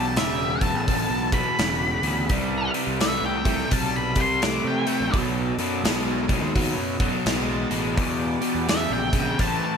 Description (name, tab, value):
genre	blues rock power trio and southern rock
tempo	85 BPM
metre	4/4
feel	swing 63% on 8ths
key	E minor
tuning	A4 = 440 Hz
part	octave-fuzz lead guitar	melody	0.0-9.8 s	E5 to D6	-27 LUFS	left 1 dB	distortion
part	overdriven tonewheel organ	sustained chords	0.0-9.8 s	C4 to A5	-35 LUFS	right 3 dB	slow rotary speaker
part	crunchy overdriven guitar	riff	0.0-9.8 s	E2 to A3	-25 LUFS	equal	spring reverb, slapback echo
part	fuzz fingered electric bass	bass	0.0-9.6 s	E1 to C3	-29 LUFS	equal	overdrive
part	big rock drum kit	drums	0.2-9.6 s	hi-hat, kick drum, snare drum	-27 LUFS	equal	none
room	moderate lush hall reverb, RT60 2.5 s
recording	big arena sound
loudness	-21 LUFS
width	side -6 dB against mid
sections	0.0-9.8 A section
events	lead electric guitar solo 0.0-9.8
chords	0.0 Em7; 2.3 Cmaj7; 5.1 B7#9; 8.0 Em7